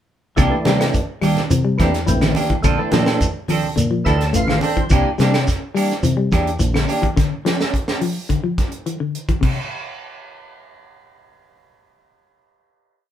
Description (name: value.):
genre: afrobeat.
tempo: 106 BPM.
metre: 4/4.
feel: straight.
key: C mixolydian.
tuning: A4 = 441 Hz.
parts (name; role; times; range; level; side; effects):
percussive tonewheel organ; accompaniment; 0.4-4.9 s; E3 to A5; -23 LUFS; left 1 dB; slow rotary speaker, chorus vibrato.
clean electric guitar; arpeggios; 0.4-9.6 s; C3 to A3; -22 LUFS; left 4 dB; none.
clean electric guitar; stabs; 0.4-7.1 s; E3 to A4; -22 LUFS; right 3 dB; none.
fingered electric bass; bass; 0.4-6.8 s; A1 to C3; -20 LUFS; left 1 dB; none.
tight funk drum kit; drums; 0.4-9.6 s; crash cymbal, hi-hat, kick drum, snare drum; -21 LUFS; right 1 dB; none.
claves; percussion; 0.4-6.9 s; none; -33 LUFS; left 1 dB; none.
congas; percussion; 0.4-4.8 s; none; -24 LUFS; right 3 dB; none.
shekere; percussion; 0.4-7.0 s; none; -24 LUFS; right 1 dB; none.
room: moderate studio reverb, RT60 0.5 s.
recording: band playing live in one room.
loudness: -16 LUFS.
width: side -10 dB against mid.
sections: 0.4-9.4 groove; 9.4-11.7 final chord.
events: tonewheel organ fill 3.8-4.9.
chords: 0.4 C9; 2.6 Bbmaj9; 4.9 C9; 7.2 Dmadd9; 9.4 N.C..